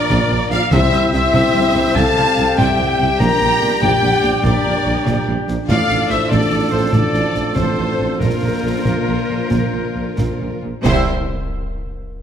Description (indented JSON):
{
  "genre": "cinematic, heroic adventure film score",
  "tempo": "88-98 BPM (dotted quarters)",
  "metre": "12/8",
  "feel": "straight",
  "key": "C mixolydian",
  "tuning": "A4 = 442 Hz",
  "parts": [
    { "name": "clear symphonic violin section", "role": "melody", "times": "0.0-11.1 s", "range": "F4 to G5", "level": "-26 LUFS", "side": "left 4 dB", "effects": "none" },
    { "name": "bright oboe", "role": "second line", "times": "0.0-11.0 s", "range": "Bb4 to Bb5", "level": "-28 LUFS", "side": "right 1 dB", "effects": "none" },
    { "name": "clear symphonic violin section", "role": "second line", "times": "0.0-11.1 s", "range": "Bb4 to Bb5", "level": "-28 LUFS", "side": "left 2 dB", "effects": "none" },
    { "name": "mellow clarinet", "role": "second line", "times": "0.0-11.0 s", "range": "Bb4 to Bb5", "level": "-27 LUFS", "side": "left 1 dB", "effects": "none" },
    { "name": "silver concert flute", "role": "second line", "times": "0.0-11.1 s", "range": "E4 to Bb5", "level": "-27 LUFS", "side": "left 2 dB", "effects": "none" },
    { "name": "warm symphonic viola section", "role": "accompaniment", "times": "0.0-11.1 s", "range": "Bb4 to Bb5", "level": "-23 LUFS", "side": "left 1 dB", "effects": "none" },
    { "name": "mellow French horn section", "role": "sustained chords", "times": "0.0-11.1 s", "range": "Bb3 to Bb4", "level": "-23 LUFS", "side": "left 4 dB", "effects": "none" },
    { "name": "mellow trombone section", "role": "sustained chords", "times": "0.0-11.0 s", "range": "F3 to D4", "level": "-26 LUFS", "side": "right 2 dB", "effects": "none" },
    { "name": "dark trumpet section", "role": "stabs", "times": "0.0-11.0 s", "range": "G4 to E5", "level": "-25 LUFS", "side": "equal", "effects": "none" },
    { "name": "clear symphonic double bass section", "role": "bass", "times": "0.1-11.1 s", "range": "A1 to C2", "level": "-23 LUFS", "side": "right 3 dB", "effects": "none" },
    { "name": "mellow tuba", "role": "bass", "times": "0.1-11.0 s", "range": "A1 to C2", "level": "-24 LUFS", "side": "right 4 dB", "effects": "none" },
    { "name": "rich symphonic cello section", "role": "bass", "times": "0.1-11.1 s", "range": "A2 to C3", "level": "-25 LUFS", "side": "right 1 dB", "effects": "none" },
    { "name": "concert snare drum, concert bass drum and clash cymbals", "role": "drums", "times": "0.1-11.1 s", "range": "none", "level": "-24 LUFS", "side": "equal", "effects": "none" },
    { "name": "timpani", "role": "percussion", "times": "0.7-1.3, 10.9-11.1 s", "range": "C3", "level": "-24 LUFS", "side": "left 1 dB", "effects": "none" }
  ],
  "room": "moderate scoring stage reverb, RT60 1.9 s",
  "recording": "none",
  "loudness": "-14 LUFS",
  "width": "side -8 dB against mid",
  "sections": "0.0-10.9 A section; 10.9-12.2 B section",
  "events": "slowing down 6.5-10.9",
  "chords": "0.0 Bb; 0.7 C; 3.2 Gm/Bb; 5.7 Dm/A; 8.2 Bbadd9; 10.9 C"
}